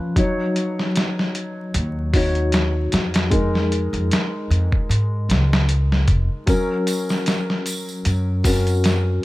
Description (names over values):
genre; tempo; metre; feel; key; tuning
trip hop; 76 BPM; 4/4; swing 55% on 16ths; Eb minor; A4 = 438 Hz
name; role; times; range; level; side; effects
dark upright piano; accompaniment; 0.0-9.2 s; F3 to Db5; -24 LUFS; left 1 dB; harmonic tremolo, tape echo
dusty soul sampler-style drum kit; drums; 0.2-9.1 s; hi-hat, kick drum, snare drum; -21 LUFS; equal; overdrive
upright bass; bass; 1.7-9.2 s; F1 to Ab2; -20 LUFS; equal; tube saturation
tambourine; percussion; 6.5-9.0 s; none; -33 LUFS; right 2 dB; none
room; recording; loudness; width
studio reverb; vinyl crackle; -18 LUFS; side -18 dB against mid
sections
0.0-9.2 A section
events
none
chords
0.2 Ebm7; 3.3 Bb7sus4/F; 6.5 Gb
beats
| 0.16 0.95 1.74 2.53 | 3.32 4.11 4.90 5.69 | 6.48 7.27 8.06 8.85